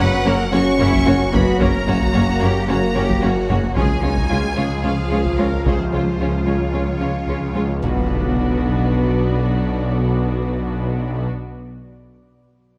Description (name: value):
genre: cinematic, hybrid orchestral and electronic film score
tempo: 111 BPM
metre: 4/4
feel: straight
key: unclear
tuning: A4 = 439 Hz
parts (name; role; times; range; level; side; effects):
- rich symphonic violin section; melody; 0.0-11.3 s; B4 to C#6; -32 LUFS; equal; none
- rich symphonic violin section; second line; 0.0-11.3 s; E#4 to C#5; -32 LUFS; equal; none
- rich symphonic viola section; accompaniment; 0.0-11.3 s; G#3 to D4; -28 LUFS; equal; none
- glassy FM pad; sustained chords; 0.5-11.3 s; E#3 to E#5; -29 LUFS; equal; ensemble chorus, built-in reverb
- mellow French horn section; sustained chords; 0.0-11.3 s; C3 to C#4; -28 LUFS; equal; none
- soft round pluck; arpeggios; 0.0-7.8 s; C#3 to F#4; -29 LUFS; equal; none
- clear symphonic double bass section; bass; 0.0-11.3 s; B1 to F#2; -28 LUFS; equal; none
- rich symphonic cello section; bass; 0.0-11.3 s; B2 to B4; -30 LUFS; equal; none
- snarling distorted saw bass; bass; 0.0-11.3 s; F#1 to C#2; -27 LUFS; equal; none
- warm tuba; bass; 0.0-11.3 s; F#1 to C#2; -28 LUFS; equal; none
- taiko ensemble; drums; 0.9-8.9 s; none; -27 LUFS; equal; none
- impact; sound effects; 7.8-10.3 s; none; -30 LUFS; equal; none
room: wet recital hall reverb, RT60 1.7 s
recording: none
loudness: -19 LUFS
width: mono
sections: 0.0-8.1 A section; 8.1-12.4 B section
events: impact 8.1-10.3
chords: 0.0 F#; 3.8 C#; 7.8 Bm